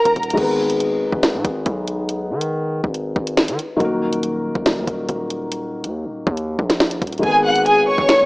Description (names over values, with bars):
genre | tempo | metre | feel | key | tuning
hip hop, drill | 140 BPM | 4/4 | half-time | G# minor | A4 = 441 Hz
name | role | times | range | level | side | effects
warm studio violin section | melody | 0.0-0.3, 7.2-8.3 s | G#4 to F#6 | -15 LUFS | equal | none
felt-muted upright piano | accompaniment | 0.0-8.3 s | D#3 to B4 | -22 LUFS | left 1 dB | none
distorted 808-style bass | bass | 0.1-8.3 s | D#1 to D#3 | -25 LUFS | equal | distortion
drill drum kit | drums | 0.1-8.2 s | crash cymbal, hi-hat, kick drum, snare drum | -20 LUFS | equal | none
room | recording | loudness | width
light reverb, small room ambience | small speaker sound | -17 LUFS | side -23 dB against mid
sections
0.4-8.3 A section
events
break 0.4-7.2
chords
0.4 G#m; 3.8 D#m; 7.2 G#m